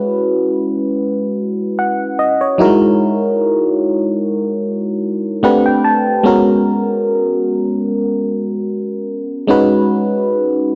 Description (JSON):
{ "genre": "R&B", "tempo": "74 BPM", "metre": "4/4", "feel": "swing 54% on 16ths", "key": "G# minor", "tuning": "A4 = 438 Hz", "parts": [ { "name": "FM electric piano", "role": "solo", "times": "0.0-10.8 s", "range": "F#3 to A5", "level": "-16 LUFS", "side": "equal", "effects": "chorus" } ], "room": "light reverb", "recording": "worn, warbling old tape, cassette tape, warbly pitch drift", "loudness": "-16 LUFS", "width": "mono", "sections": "0.0-10.8 A section", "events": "FM electric piano fill 5.0-6.2", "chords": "0.0 F#9sus4; 2.6 Emaj9#11/G#; 5.4 Am11; 6.2 G#m11; 9.5 C#9sus4" }